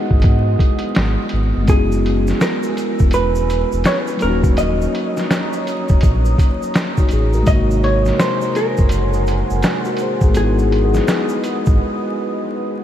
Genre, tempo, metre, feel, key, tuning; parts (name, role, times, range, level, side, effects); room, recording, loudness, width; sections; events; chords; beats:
lo-fi hip hop; 83 BPM; 4/4; swing 62% on 16ths; A4 = 440 Hz
mellow tine electric piano; accompaniment; 0.0-12.8 s; B#2 to B#4; -22 LUFS; left 1 dB; slow stereo tremolo, cassette tape, low-pass filter
deep dark ambient pad; sustained chords; 0.0-12.8 s; B3 to E6; -27 LUFS; right 1 dB; chorus, built-in reverb, low-pass filter
sub bass with octave; bass; 0.1-11.8 s; D#1 to G#2; -18 LUFS; equal
lo-fi sampler-style drum kit; drums; 0.1-11.8 s; hi-hat, kick drum, snare drum; -18 LUFS; equal; vintage 12-bit sampler grit
vintage hollow-body jazz guitar; melody; 1.7-11.4 s; G#4 to D#5; -23 LUFS; equal; low-pass filter, analog delay
tube shaker; percussion; 1.7-11.8 s; -41 LUFS; right 6 dB
moderate huge ambient reverb, RT60 8.7 s; dreamy mix soaked in reverb, vinyl crackle; -14 LUFS; side -11 dB against mid
0.0-12.8 A section
break 11.8-12.8
0.0 Emaj9; 1.7 F#9sus4; 4.2 D#m7; 7.5 G#9; 10.4 Emaj9/G#
0.23 0.96 | 1.68 2.40 3.13 3.85 | 4.57 5.29 6.02 6.74 | 7.46 8.19 8.91 9.63 | 10.36 11.08 11.80 12.52